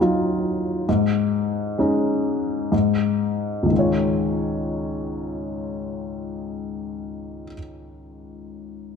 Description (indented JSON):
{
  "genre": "folk",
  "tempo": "59-69 BPM",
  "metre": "3/4",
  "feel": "straight",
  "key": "Db major",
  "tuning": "A4 = 440 Hz",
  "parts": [
    { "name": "warm upright piano", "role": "melody", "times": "0.0-9.0 s", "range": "Db2 to Db5", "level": "-22 LUFS", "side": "left 2 dB", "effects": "none" }
  ],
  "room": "wet large studio reverb, RT60 1.4 s",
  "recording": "dark, warm production",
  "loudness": "-21 LUFS",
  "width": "side -6 dB against mid",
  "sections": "0.0-3.7 A section; 3.7-6.7 B section",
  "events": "slowing down 0.0-3.7",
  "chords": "0.0 Ebmadd9; 0.9 Absus4; 2.7 N.C.; 3.7 Dbadd9"
}